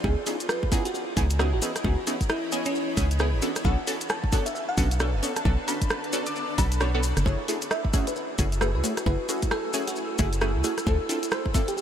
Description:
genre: UK garage, two-step garage.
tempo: 133 BPM.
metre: 4/4.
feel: swing 61% on 16ths.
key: F# minor.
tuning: A4 = 444 Hz.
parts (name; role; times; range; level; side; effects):
bell-like FM electric piano; melody; 0.0-11.8 s; C#4 to D6; -33 LUFS; equal; chorus, phaser, diffuse ambient delay.
punchy chord stab; stabs; 0.0-11.7 s; A3 to C#5; -30 LUFS; equal; chorus, phaser, diffuse ambient delay.
organ-like FM bass; bass; 0.0-11.0 s; F#1 to D2; -25 LUFS; equal; none.
electronic kick drum; drums; 0.0-11.7 s; none; -26 LUFS; equal; none.
maracas; percussion; 0.0-11.8 s; none; -37 LUFS; left 3 dB; none.
granular cloud pad; texture; 0.0-11.8 s; F3 to C6; -36 LUFS; left 1 dB; built-in reverb, wide subtle chorus, sidechain pumping.
garage drum kit; drums; 0.3-11.8 s; hi-hat, rim click; -33 LUFS; right 1 dB; none.
airy breathy pad; sustained chords; 7.3-11.8 s; E4 to E6; -36 LUFS; right 6 dB; chorus, sidechain pumping.
room: moderate huge ambient reverb, RT60 7.9 s.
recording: dreamy mix soaked in reverb.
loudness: -23 LUFS.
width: side -9 dB against mid.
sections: 0.0-11.8 A section.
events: none.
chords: 0.0 C#m9; 3.4 Bm9; 7.3 F#m9; 10.9 Dm9.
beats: | 0.04 0.49 0.94 1.39 | 1.84 2.30 2.75 3.20 | 3.65 4.10 4.55 5.00 | 5.45 5.91 6.36 6.81 | 7.26 7.71 8.16 8.61 | 9.06 9.51 9.96 10.42 | 10.87 11.32 11.77.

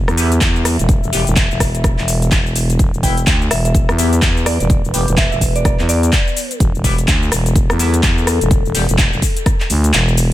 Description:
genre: bass house.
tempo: 126 BPM.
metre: 4/4.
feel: swing 60% on 16ths.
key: E minor.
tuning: A4 = 441 Hz.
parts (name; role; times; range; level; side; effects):
sweeping resonant pad; sustained chords; 0.1-10.3 s; G3 to E5; -28 LUFS; left 2 dB; chorus, sidechain pumping.
growling FM bass; bass; 0.0-10.3 s; E1 to E2; -16 LUFS; equal; overdrive, sidechain pumping.
house drum kit; drums; 0.1-10.3 s; handclaps, hi-hat, rim click, shaker; -19 LUFS; left 1 dB; none.
band-passed chord stab; stabs; 0.2-8.8 s; G3 to G4; -26 LUFS; left 3 dB; phaser, lush chorus, sidechain pumping, ping-pong delay.
electronic kick drum; drums; 0.4-9.6 s; none; -16 LUFS; equal; none.
soft synth bell; melody; 3.0-6.6 s; D5 to G5; -24 LUFS; right 1 dB; chorus, ping-pong delay.
room: digital ambience.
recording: none.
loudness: -12 LUFS.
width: side -14 dB against mid.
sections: 0.0-10.3 A section.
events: kick drops out 9.9-10.3.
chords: 0.0 Em.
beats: 0.41 | 0.89 1.36 1.84 2.32 | 2.79 3.27 3.75 4.22 | 4.70 5.17 5.65 6.13 | 6.60 7.08 7.55 8.03 | 8.51 8.98 9.46 9.94.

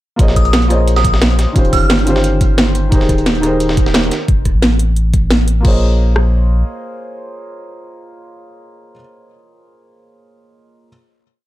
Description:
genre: liquid drum and bass.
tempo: 176 BPM.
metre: 4/4.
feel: straight.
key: Bb dorian.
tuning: A4 = 440 Hz.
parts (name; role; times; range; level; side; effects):
felt-muted upright piano; accompaniment; 0.2-10.9 s; Eb3 to Eb5; -19 LUFS; equal; ping-pong delay.
sub bass with octave; bass; 0.2-6.6 s; Eb1 to Bb1; -14 LUFS; equal; none.
breakbeat sampler-style drum kit; drums; 0.2-4.2 s; hi-hat, snare drum; -22 LUFS; equal; high-pass filter on hats, high-pass filter on snare.
drum and bass drum kit; drums; 0.2-6.2 s; kick drum, rim click; -13 LUFS; equal; none.
drum and bass drum kit; drums; 0.2-5.7 s; crash cymbal, hi-hat, rim click, snare drum; -17 LUFS; right 1 dB; none.
glassy synth bell; melody; 0.4-2.0 s; Eb6 to F6; -20 LUFS; right 2 dB; chorus, phaser, ping-pong delay.
room: little or no reverb.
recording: dark, warm production.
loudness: -11 LUFS.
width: side -15 dB against mid.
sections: 0.2-5.6 drop; 5.6-8.4 final chord.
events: drop 0.2-5.6.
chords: 0.2 Bbm11; 1.6 Eb13; 2.9 Abmaj9/Eb; 4.1 F; 5.6 Bbm11.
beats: | 0.19 0.53 0.88 1.22 | 1.56 1.90 2.24 2.58 | 2.92 3.26 3.60 3.94 | 4.28 4.62 4.96 5.31 | 5.65 5.99 6.33 6.67 | 7.01 7.35 7.69 8.03.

